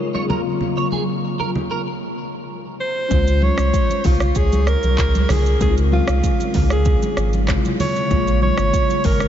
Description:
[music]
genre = afrobeats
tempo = 96 BPM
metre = 4/4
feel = straight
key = Db major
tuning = A4 = 440 Hz
[part]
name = bell-like tine electric piano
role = accompaniment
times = 0.0-9.3 s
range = C3 to Db5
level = -24 LUFS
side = left 3 dB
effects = ensemble chorus, low-pass filter
[part]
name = clean electric guitar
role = riff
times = 0.1-1.8 s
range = Ab4 to Db5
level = -29 LUFS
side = right 3 dB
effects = ensemble chorus, low-pass filter, ping-pong delay
[part]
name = congas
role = percussion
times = 0.1-9.2 s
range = none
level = -27 LUFS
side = right 2 dB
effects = none
[part]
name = breathy alto saxophone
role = melody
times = 2.8-9.3 s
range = F4 to Db5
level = -22 LUFS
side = right 1 dB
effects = ping-pong delay
[part]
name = warm sub bass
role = bass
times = 3.1-9.3 s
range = Ab1 to Db2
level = -18 LUFS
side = equal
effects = none
[part]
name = afro-pop drum kit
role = drums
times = 3.1-9.3 s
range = handclaps, hi-hat, kick drum, rim click, shaker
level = -21 LUFS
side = equal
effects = none
[sound]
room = moderate huge ambient reverb, RT60 9.0 s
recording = dreamy mix soaked in reverb, nothing above 7.6 kHz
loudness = -16 LUFS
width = side -10 dB against mid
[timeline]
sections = 0.0-3.1 A section; 3.1-9.3 B section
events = stop 1.9-3.1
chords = 0.3 Gbmaj7; 3.1 Dbmaj7; 8.1 Bbm7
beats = | 0.61 1.23 1.86 2.48 | 3.11 3.73 4.36 4.98 | 5.61 6.23 6.86 7.48 | 8.11 8.73

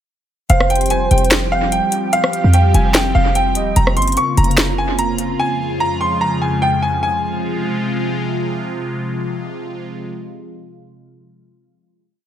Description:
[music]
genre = hip hop, trap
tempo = 147 BPM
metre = 4/4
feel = half-time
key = F minor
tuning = A4 = 440 Hz
[part]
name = bright concert grand piano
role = melody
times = 0.5-8.2 s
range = F5 to Db6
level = -19 LUFS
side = right 1 dB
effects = analog delay
[part]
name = gliding portamento lead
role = second line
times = 0.5-3.7 s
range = C5 to G5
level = -24 LUFS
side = right 4 dB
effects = chorus, analog delay
[part]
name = sweeping resonant pad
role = sustained chords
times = 0.5-10.1 s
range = F2 to G4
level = -21 LUFS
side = left 1 dB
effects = chorus, phaser
[part]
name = short 808-style bass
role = bass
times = 0.5-5.4 s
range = Eb1 to F2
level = -16 LUFS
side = equal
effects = none
[part]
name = trap drum kit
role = drums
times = 0.5-5.3 s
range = handclaps, hi-hat, rim click, snare drum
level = -19 LUFS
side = left 1 dB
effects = analog delay
[sound]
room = light reverb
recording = echo-heavy mix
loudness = -14 LUFS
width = side -10 dB against mid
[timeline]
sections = 0.5-7.0 hook; 7.0-10.3 final chord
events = none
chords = 0.5 Fsus2; 3.8 Bbmadd9/F; 5.4 Db/F; 7.0 Fm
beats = | 0.50 0.91 1.31 1.72 | 2.13 2.54 2.95 3.35 | 3.76 4.17 4.58 4.99 | 5.39 5.80 6.21 6.62 | 7.03 7.43 7.84 8.25 | 8.66 9.07 9.48 9.88

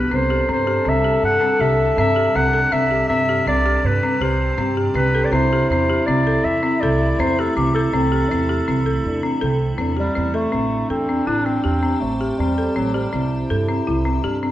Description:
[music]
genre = contemporary instrumental, chamber music in an uneven meter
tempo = 161 BPM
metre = 7/4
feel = straight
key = A minor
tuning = A4 = 441 Hz
[part]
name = warm clarinet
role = melody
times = 0.0-13.5 s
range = F#3 to F#5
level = -22 LUFS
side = equal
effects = none
[part]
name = icy glass pad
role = sustained chords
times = 0.0-14.5 s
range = C3 to C6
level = -30 LUFS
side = right 2 dB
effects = chorus, built-in reverb
[part]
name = folk marimba with hard mallets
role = arpeggios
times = 0.0-14.5 s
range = C4 to A4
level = -22 LUFS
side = left 1 dB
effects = none
[part]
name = mellow French horn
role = second line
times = 0.1-14.5 s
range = C4 to A4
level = -25 LUFS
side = left 2 dB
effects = none
[part]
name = upright bass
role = bass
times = 0.1-14.5 s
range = A1 to G2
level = -23 LUFS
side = right 2 dB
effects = none
[sound]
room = wet recital hall reverb, RT60 1.5 s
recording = worn, warbling old tape, cassette tape, warbly pitch drift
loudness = -16 LUFS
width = side -13 dB against mid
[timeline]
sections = 0.0-10.5 A section; 10.5-14.5 B section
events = none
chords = 0.1 Csus2; 5.3 Am/C; 10.5 Am7; 13.1 C6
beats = | 0.12 0.49 0.86 1.23 1.61 1.98 2.35 | 2.72 3.10 3.47 3.84 4.21 4.59 4.96 | 5.33 5.70 6.08 6.45 6.82 7.19 7.57 | 7.94 8.31 8.68 9.05 9.42 9.80 10.17 | 10.54 10.91 11.28 11.66 12.03 12.40 12.77 | 13.14 13.52 13.89 14.26

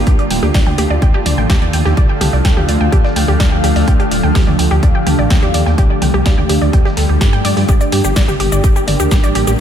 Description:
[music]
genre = melodic techno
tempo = 126 BPM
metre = 4/4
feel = straight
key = unclear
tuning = A4 = 440 Hz
[part]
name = evolving wavetable pad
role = sustained chords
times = 0.0-9.6 s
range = D3 to G4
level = -19 LUFS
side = equal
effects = chorus, built-in reverb, sidechain pumping
[part]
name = dark detuned saw bass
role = bass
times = 0.0-9.5 s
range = D1 to G2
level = -16 LUFS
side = equal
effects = sidechain pumping
[part]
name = airy breathy pad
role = texture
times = 0.0-9.6 s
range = D4 to G5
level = -23 LUFS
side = right 2 dB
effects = chorus, phaser, sidechain pumping
[part]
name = wide unison pluck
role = arpeggios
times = 0.1-9.5 s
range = G4 to G5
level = -20 LUFS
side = right 1 dB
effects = sidechain pumping, diffuse ambient delay
[part]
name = dusty soul sampler-style drum kit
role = drums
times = 0.1-9.6 s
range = hi-hat, snare drum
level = -33 LUFS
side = right 1 dB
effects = none
[part]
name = electronic kick drum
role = drums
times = 0.1-9.2 s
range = none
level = -12 LUFS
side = equal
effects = none
[part]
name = punchy analog drum machine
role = drums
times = 0.3-9.6 s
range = hi-hat, shaker, snare drum, toms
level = -22 LUFS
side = left 1 dB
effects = overdrive
[part]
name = swell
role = sound effects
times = 6.9-7.7 s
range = none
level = -28 LUFS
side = equal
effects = none
[sound]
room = light reverb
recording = none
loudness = -10 LUFS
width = side -9 dB against mid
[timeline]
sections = 0.0-9.6 A section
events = swell 6.9-7.7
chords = 0.1 Dm; 7.7 Gm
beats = | 0.07 0.54 1.02 1.50 | 1.97 2.45 2.92 3.40 | 3.88 4.35 4.83 5.30 | 5.78 6.26 6.73 7.21 | 7.69 8.16 8.64 9.11 | 9.59

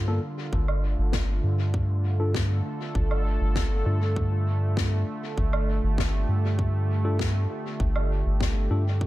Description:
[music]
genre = ambient dub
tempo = 99 BPM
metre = 4/4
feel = straight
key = unclear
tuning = A4 = 439 Hz
[part]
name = warm analog pad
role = sustained chords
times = 0.0-9.1 s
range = D3 to Bb4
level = -32 LUFS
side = right 2 dB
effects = chorus
[part]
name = soft dub sub bass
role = bass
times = 0.0-9.1 s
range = G1 to G2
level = -24 LUFS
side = equal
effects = none
[part]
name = bright tine electric piano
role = stabs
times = 0.1-8.8 s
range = Bb3 to A4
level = -36 LUFS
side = left 3 dB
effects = overdrive, vintage 12-bit sampler grit, low-pass filter, dub echo
[part]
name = electronic kick drum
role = drums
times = 0.5-9.1 s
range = none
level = -29 LUFS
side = equal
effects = none
[part]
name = woodblock and snare drum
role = drums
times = 0.7-8.5 s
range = none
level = -35 LUFS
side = left 2 dB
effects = dub echo
[sound]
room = little or no reverb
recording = echo-heavy mix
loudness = -23 LUFS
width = side -16 dB against mid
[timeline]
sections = 0.0-9.1 A section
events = filter sweep on tine electric piano 0.0-9.1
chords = 0.0 Gm7; 0.5 Dm/G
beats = | 0.53 1.13 1.74 2.35 | 2.95 3.56 4.16 4.77 | 5.38 5.98 6.59 7.19 | 7.80 8.41 9.01

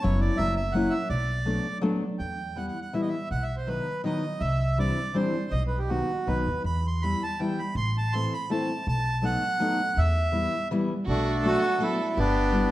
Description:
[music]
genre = musette waltz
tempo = 163 BPM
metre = 3/4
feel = swing 55% on 8ths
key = E harmonic minor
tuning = A4 = 439 Hz
[part]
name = accordion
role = melody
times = 0.0-12.7 s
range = A3 to C6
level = -28 LUFS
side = right 1 dB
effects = none
[part]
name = fingerpicked steel-string acoustic guitar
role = accompaniment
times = 0.0-12.7 s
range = D#3 to E4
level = -29 LUFS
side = left 2 dB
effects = none
[part]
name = upright bass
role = bass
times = 0.0-12.6 s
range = F#1 to E2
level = -27 LUFS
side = equal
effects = none
[part]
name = rich violin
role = second line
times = 11.1-12.7 s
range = F#4 to A4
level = -34 LUFS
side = right 5 dB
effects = none
[sound]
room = wet recital hall reverb, RT60 1.6 s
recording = none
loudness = -24 LUFS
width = side -15 dB against mid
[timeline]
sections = 0.0-2.2 A section; 2.2-11.1 B section; 11.1-12.7 A section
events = none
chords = 0.0 F#7sus4; 0.4 F#7; 1.1 Bm7; 2.2 Em; 3.3 B; 4.4 Cadd9; 5.5 B; 6.7 Em; 7.8 Am; 8.9 B7; 10.0 Em; 11.1 Bm7; 12.2 G6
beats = | 0.03 0.39 0.74 | 1.10 1.46 1.83 | 2.20 2.57 2.94 | 3.31 3.68 4.04 | 4.41 4.78 5.15 | 5.52 5.90 6.27 | 6.65 7.03 7.40 | 7.76 8.13 8.50 | 8.86 9.23 9.60 | 9.97 10.34 10.71 | 11.09 11.45 11.81 | 12.17 12.53

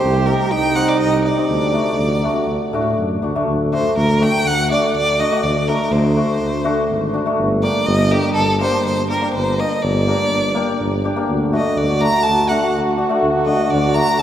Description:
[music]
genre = klezmer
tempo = 123 BPM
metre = 4/4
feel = straight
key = D phrygian dominant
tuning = A4 = 439 Hz
[part]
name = rich violin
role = melody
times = 0.0-14.2 s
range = G4 to Bb5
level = -20 LUFS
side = equal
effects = none
[part]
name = clear trombone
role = second line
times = 0.0-3.2, 11.3-14.2 s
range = D4 to G4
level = -21 LUFS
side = right 3 dB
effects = none
[part]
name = mellow tuba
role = bass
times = 0.0-14.0 s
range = G1 to A2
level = -20 LUFS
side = equal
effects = none
[part]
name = cimbalom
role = accompaniment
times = 0.3-14.1 s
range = A3 to G4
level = -20 LUFS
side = left 2 dB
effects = none
[sound]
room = wet church reverb, RT60 4.0 s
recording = recorded in a church or concert hall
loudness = -15 LUFS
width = side -10 dB against mid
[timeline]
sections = 0.0-3.5 A section; 3.5-14.2 A section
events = none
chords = 0.0 Cm; 1.5 D; 7.4 Gm; 11.3 D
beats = 0.02 0.52 1.01 | 1.50 1.99 2.48 2.97 | 3.46 3.95 4.44 4.93 | 5.42 5.91 6.40 6.89 | 7.37 7.86 8.35 8.84 | 9.32 9.81 10.30 10.79 | 11.27 11.76 12.25 12.73 | 13.22 13.71 14.20

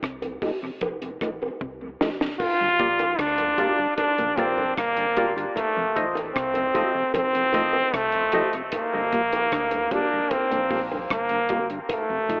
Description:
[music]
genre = dub reggae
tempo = 76 BPM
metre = 4/4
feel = straight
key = G minor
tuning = A4 = 440 Hz
[part]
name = mellow electric guitar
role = riff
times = 0.0-12.4 s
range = F2 to D3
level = -38 LUFS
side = left 1 dB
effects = dub echo
[part]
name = warm sub bass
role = bass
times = 0.0-12.4 s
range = F1 to D2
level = -46 LUFS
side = equal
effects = none
[part]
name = deep reggae drum kit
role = drums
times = 0.0-12.4 s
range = crash cymbal, hi-hat, kick drum, rim click, snare drum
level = -31 LUFS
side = equal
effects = dub echo
[part]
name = mellow tonewheel organ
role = accompaniment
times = 0.2-12.4 s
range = F2 to F4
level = -33 LUFS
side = equal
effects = slow rotary speaker
[part]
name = bongos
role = percussion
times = 0.2-12.1 s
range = none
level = -32 LUFS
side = equal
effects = dub echo
[part]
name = brilliant trombone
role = melody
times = 2.4-12.4 s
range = A3 to F4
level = -22 LUFS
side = equal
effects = dub echo
[part]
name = percussive organ stab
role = stabs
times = 2.8-8.6 s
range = F4 to Eb5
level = -30 LUFS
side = equal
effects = chorus, dub echo
[sound]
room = moderate plate reverb, RT60 2.9 s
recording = echo-heavy mix, telephone sound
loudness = -21 LUFS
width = side -29 dB against mid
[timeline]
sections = 0.0-12.4 A section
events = break 0.0-2.4; drum fill 1.6-2.4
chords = 0.0 F7; 2.4 Gm7; 5.6 F7; 8.7 Gm7; 11.9 F7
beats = 0.03 0.82 1.61 | 2.40 3.19 3.99 4.78 | 5.57 6.36 7.15 7.94 | 8.73 9.53 10.32 11.11 | 11.90

